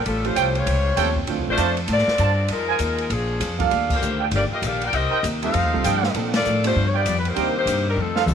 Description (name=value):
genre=jazz, big band swing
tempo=197 BPM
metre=4/4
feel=swing 63% on 8ths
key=Bb major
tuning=A4 = 440 Hz
part: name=clear saxophone section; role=melody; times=0.0-8.3 s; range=F3 to G5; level=-23 LUFS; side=left 3 dB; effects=tape echo
part: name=upright bass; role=bass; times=0.0-8.3 s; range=G1 to Bb2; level=-24 LUFS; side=left 1 dB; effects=none
part: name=open jazz drum kit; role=drums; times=0.1-8.3 s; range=crash cymbal, hi-hat, kick drum, ride cymbal, snare drum, toms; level=-28 LUFS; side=equal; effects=none
part: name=warm grand piano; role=accompaniment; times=0.2-7.5 s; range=E#3 to B#4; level=-29 LUFS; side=right 12 dB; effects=none
part: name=mellow trumpet section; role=stabs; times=0.4-8.2 s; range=Eb4 to A5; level=-26 LUFS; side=right 10 dB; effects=tape echo
part: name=picked steel-string acoustic guitar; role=accompaniment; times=3.7-8.3 s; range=F2 to G4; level=-32 LUFS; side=left 13 dB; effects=none
room=light reverb, small room ambience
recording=1960s-style stereo with parts hard left and right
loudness=-19 LUFS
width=side -8 dB against mid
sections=0.0-8.3 A section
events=band accent 3.9, 6.3; drum fill 8.0-8.3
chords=0.1 A7alt; 1.3 Dm7; 2.5 Fm7; 3.1 Bb7; 3.7 Ebmaj9#11; 4.9 Cm7; 5.5 F9; 6.1 Bbmaj7; 6.7 G7; 7.4 Cm7